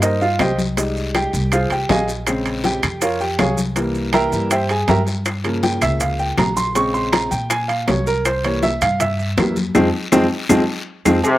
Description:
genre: latin, salsa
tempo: 160 BPM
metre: 4/4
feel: straight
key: F minor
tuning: A4 = 440 Hz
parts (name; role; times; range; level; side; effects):
- clear grand piano; accompaniment; 0.0-11.2 s; Db3 to Db6; -19 LUFS; right 1 dB; slapback echo
- upright bass; bass; 0.0-11.2 s; Bb1 to Bb2; -23 LUFS; equal; none
- bongos and cowbell; percussion; 0.0-11.4 s; none; -25 LUFS; left 4 dB; slapback echo
- congas; percussion; 0.0-11.4 s; none; -26 LUFS; left 2 dB; slapback echo
- guiro; percussion; 0.0-11.4 s; none; -32 LUFS; left 4 dB; none
- maracas; percussion; 0.0-11.4 s; none; -30 LUFS; right 3 dB; none
- timbales and agogo bells; percussion; 0.0-11.4 s; none; -24 LUFS; right 4 dB; slapback echo
- claves; percussion; 0.4-11.4 s; none; -28 LUFS; left 4 dB; none
- brilliant trombone section; second line; 11.2-11.4 s; C3; -14 LUFS; left 1 dB; none
room: little or no reverb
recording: recorded outdoors, with no room sound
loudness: -16 LUFS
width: side -15 dB against mid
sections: 0.0-11.2 A section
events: grand piano solo 0.0-11.2; drum fill 9.7-11.2; band accent 9.7-11.2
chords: 0.0 Cm7; 0.8 Fm7/C; 2.3 Bbm7; 3.8 C7; 5.3 Gm7b5; 6.8 Bbm7; 8.3 C7; 9.7 Fm

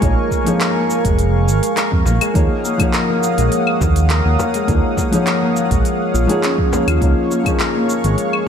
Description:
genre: organic downtempo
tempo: 103 BPM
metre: 4/4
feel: straight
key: unclear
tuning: A4 = 439 Hz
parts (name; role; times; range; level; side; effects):
- felt-muted upright piano; accompaniment; 0.0-8.5 s; F3 to Db5; -24 LUFS; left 1 dB; sidechain pumping, ping-pong delay
- warm analog pad; sustained chords; 0.0-8.5 s; Ab4 to Eb6; -22 LUFS; right 1 dB; chorus, sidechain pumping
- concert harp; arpeggios; 0.0-8.5 s; F3 to Bb4; -19 LUFS; left 2 dB; ping-pong delay
- smooth synth bass; bass; 0.0-8.2 s; F1 to F2; -16 LUFS; right 1 dB; sidechain pumping
- electronic kick drum; drums; 0.0-7.6 s; none; -19 LUFS; right 1 dB; none
- organic electronic drum kit; drums; 0.0-8.4 s; cabasa, claves, handclaps, hi-hat; -23 LUFS; left 1 dB; none
- frame drum; percussion; 2.1-6.8 s; none; -27 LUFS; left 4 dB; none
room: light reverb, digital ambience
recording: none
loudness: -14 LUFS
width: side -8 dB against mid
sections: 0.0-8.5 A section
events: none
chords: 0.0 Bbm7; 2.4 Ebm9; 7.0 Db

